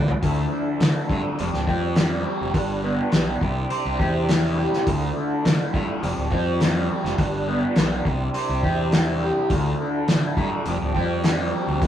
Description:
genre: psychedelic rock.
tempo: 103 BPM.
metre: 4/4.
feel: straight.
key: D dorian.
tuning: A4 = 438 Hz.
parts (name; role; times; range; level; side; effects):
percussive tonewheel organ; sustained chords; 0.0-11.9 s; F3 to G5; -31 LUFS; right 2 dB; slow rotary speaker, overdrive, chorus vibrato.
fuzz fingered electric bass; bass; 0.0-11.9 s; D1 to D3; -26 LUFS; equal; overdrive.
cloth-damped thuddy drum kit; drums; 0.1-11.9 s; hi-hat, kick drum, snare drum, toms; -23 LUFS; left 1 dB; none.
raw garage guitar; riff; 0.2-11.9 s; D2 to C5; -24 LUFS; equal; overdrive, phaser.
room: moderate studio reverb, RT60 0.6 s.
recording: rough rehearsal-room recording.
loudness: -20 LUFS.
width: side -10 dB against mid.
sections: 0.2-11.9 A section.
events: drum fill 0.0.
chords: 0.2 Dmadd9; 1.4 Fsus2; 2.5 G; 3.4 Cadd9; 4.9 Dmadd9; 6.0 Fsus2; 7.2 G; 8.1 Cadd9; 9.5 Dmadd9; 10.7 Fsus2.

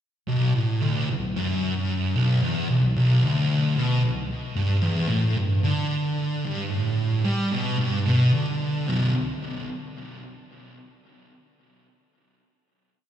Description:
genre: rock.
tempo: 112 BPM.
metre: 4/4.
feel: straight.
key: B minor.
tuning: A4 = 441 Hz.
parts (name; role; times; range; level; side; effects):
thick fuzz guitar; solo; 0.3-9.1 s; B1 to G3; -22 LUFS; equal; distortion, slapback echo, tape echo.
room: light reverb.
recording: live gig heard through the venue's PA, recital hall reverb.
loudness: -21 LUFS.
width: side -10 dB against mid.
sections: 0.3-8.9 riff; 8.9-11.0 final chord.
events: none.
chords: 0.3 Bm; 4.6 G5; 8.9 B5.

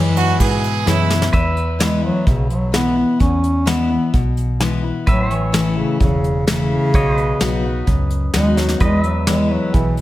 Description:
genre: honky-tonk and classic country.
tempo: 128 BPM.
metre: 4/4.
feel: straight.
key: E major.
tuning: A4 = 438 Hz.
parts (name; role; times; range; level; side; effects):
warm bass clarinet; melody; 0.0-10.0 s; C#3 to C#4; -19 LUFS; equal; none.
picked steel-string acoustic guitar; accompaniment; 0.0-10.0 s; E2 to F#4; -22 LUFS; left 5 dB; none.
warm upright piano; accompaniment; 0.0-1.2, 8.8-10.0 s; E4 to C#5; -28 LUFS; right 5 dB; none.
pedal steel guitar; sustained chords; 0.0-10.0 s; B4 to E5; -27 LUFS; right 1 dB; none.
vintage muted fingered electric bass; bass; 0.0-10.0 s; E1 to G#2; -21 LUFS; equal; none.
clear fiddle; second line; 0.2-1.2 s; E4 to G#4; -21 LUFS; right 5 dB; none.
soft brush drum kit; drums; 0.2-10.0 s; hi-hat, kick drum, ride cymbal, snare drum; -20 LUFS; equal; none.
room: moderate recital hall reverb, RT60 1.6 s.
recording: none.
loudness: -15 LUFS.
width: side -15 dB against mid.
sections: 0.0-1.3 A section; 1.3-10.0 B section.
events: drum fill 0.9-1.3, 8.6; bass clarinet solo 1.3-10.0.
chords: 0.0 E; 5.1 A; 6.9 B; 8.8 E.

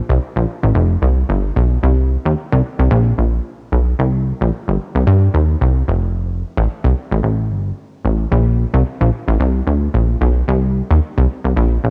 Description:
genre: funk.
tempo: 111 BPM.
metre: 4/4.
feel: swing 56% on 16ths.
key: C dorian.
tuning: A4 = 439 Hz.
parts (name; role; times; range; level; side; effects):
plucky analog bass; solo; 0.1-11.9 s; F1 to G2; -16 LUFS; equal; none.
room: light reverb.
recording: home recording on cassette.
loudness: -17 LUFS.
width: mono.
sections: 0.0-1.8 A section; 1.8-11.9 B section.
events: none.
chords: none.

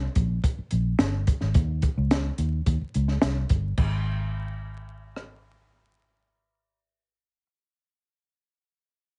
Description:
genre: uptempo 1960s-style soul.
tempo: 108 BPM.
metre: 4/4.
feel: straight.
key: unclear.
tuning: A4 = 441 Hz.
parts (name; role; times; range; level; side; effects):
vintage muted fingered electric bass; bass; 0.0-7.5 s; G1 to Eb2; -28 LUFS; equal; none.
compact cocktail drum kit; drums; 0.2-5.3 s; crash cymbal, hi-hat, kick drum, rim click, snare drum; -28 LUFS; equal; none.
room: light reverb.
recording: heavily compressed radio sound, multiband compression, vinyl crackle, nothing above 10.6 kHz.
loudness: -26 LUFS.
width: mono.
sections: 0.0-3.8 A section; 3.8-6.0 B section.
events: none.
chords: none.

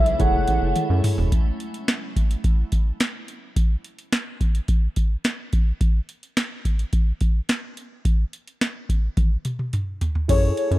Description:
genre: early-eighties boogie funk.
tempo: 107 BPM.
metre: 4/4.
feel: straight.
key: F# minor.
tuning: A4 = 440 Hz.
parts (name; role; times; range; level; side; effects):
warm velvety synth lead; melody; 0.0-1.0, 10.3-10.8 s; C#5 to F#5; -23 LUFS; equal; chorus, phaser, slapback echo.
mellow tine electric piano; accompaniment; 0.0-1.3, 10.3-10.8 s; E4 to C#5; -28 LUFS; right 1 dB; medium stereo tremolo.
icy glass pad; sustained chords; 0.0-1.3, 10.6-10.8 s; C#3 to E4; -35 LUFS; left 1 dB; chorus, built-in reverb.
rubbery square bass; bass; 0.0-1.3, 10.3-10.8 s; E1 to F#2; -22 LUFS; equal; none.
booming analog drum machine; drums; 0.1-10.8 s; crash cymbal, hi-hat, kick drum, snare drum, toms; -20 LUFS; equal; none.
room: little or no reverb.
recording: dry, close 1970s-style studio recording.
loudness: -20 LUFS.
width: side -17 dB against mid.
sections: 0.0-1.3 A section; 1.3-10.3 B section.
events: drum fill 0.8-1.3, 9.2-10.3.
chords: 0.2 F#m7; 1.3 N.C..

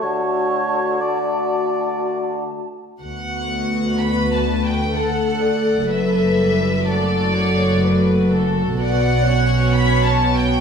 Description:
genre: classical, slow romantic movement for symphony orchestra.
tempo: 62 BPM.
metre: 3/4.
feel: uneven beats, rubato.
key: D major.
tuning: A4 = 440 Hz.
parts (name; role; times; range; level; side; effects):
mellow hollow small flute group; second line; 0.0-2.7 s; A5; -28 LUFS; right 2 dB; none.
warm clarinet; second line; 0.0-2.7 s; F#4; -29 LUFS; left 1 dB; none.
warm oboe; second line; 0.0-2.5 s; C#5 to D5; -24 LUFS; equal; none.
warm bassoon; accompaniment; 0.0-2.7 s; D3; -25 LUFS; right 2 dB; none.
warm French horn section; sustained chords; 0.0-2.6 s; A3 to F#4; -26 LUFS; left 6 dB; none.
rich studio violin section; melody; 3.0-10.6 s; D5 to B5; -24 LUFS; left 1 dB; none.
warm studio viola section; accompaniment; 3.0-10.6 s; G3 to A4; -22 LUFS; left 1 dB; none.
warm studio cello section; bass; 3.0-10.6 s; D2 to B2; -21 LUFS; equal; none.
warm studio double bass section; bass; 3.0-10.6 s; F#1 to D2; -22 LUFS; right 2 dB; none.
warm studio violin section; second line; 4.0-10.6 s; A4 to D5; -24 LUFS; left 2 dB; none.
room: wet stone room reverb, RT60 1.5 s.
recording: heard from further back in the room.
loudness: -16 LUFS.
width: side -6 dB against mid.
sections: 0.0-3.0 A section; 3.0-10.6 B section.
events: none.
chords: 0.0 D; 5.9 D/F#; 8.8 Bm.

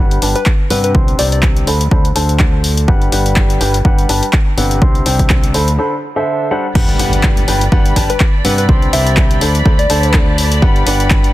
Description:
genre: piano house.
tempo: 124 BPM.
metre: 4/4.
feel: swing 56% on 16ths.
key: G major.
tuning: A4 = 438 Hz.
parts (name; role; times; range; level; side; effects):
clear baby grand piano; riff; 0.0-11.3 s; C3 to C6; -18 LUFS; equal; sidechain pumping, low-pass filter, tape echo.
modern bright fingered electric bass; bass; 0.0-11.3 s; G1 to G2; -16 LUFS; equal; sidechain pumping.
punchy analog drum machine; drums; 0.1-11.3 s; crash cymbal, handclaps, hi-hat; -20 LUFS; left 2 dB; overdrive.
soft struck synth lead; melody; 0.4-1.4, 8.1-10.1 s; B4 to E5; -20 LUFS; left 1 dB; chorus, tape echo.
electronic kick drum; drums; 0.5-11.2 s; none; -12 LUFS; equal; overdrive.
dark studio string section; sustained chords; 6.8-11.3 s; D5 to B5; -23 LUFS; equal; sidechain pumping.
impact; sound effects; 6.8-8.7 s; none; -24 LUFS; equal; none.
room: little or no reverb.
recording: dense, heavily limited modern master.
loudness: -10 LUFS.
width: side -16 dB against mid.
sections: 0.0-6.8 A section; 6.8-11.3 B section.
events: break 5.8-6.8; drop 6.8-11.3; impact 6.8-8.7.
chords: 0.0 Gmaj7; 0.9 Csus2; 1.7 D5; 2.9 Gmaj7; 4.8 Csus2; 5.5 D7(no3); 6.8 Gmaj7; 8.7 Csus2; 9.4 D5; 10.6 Gmaj7.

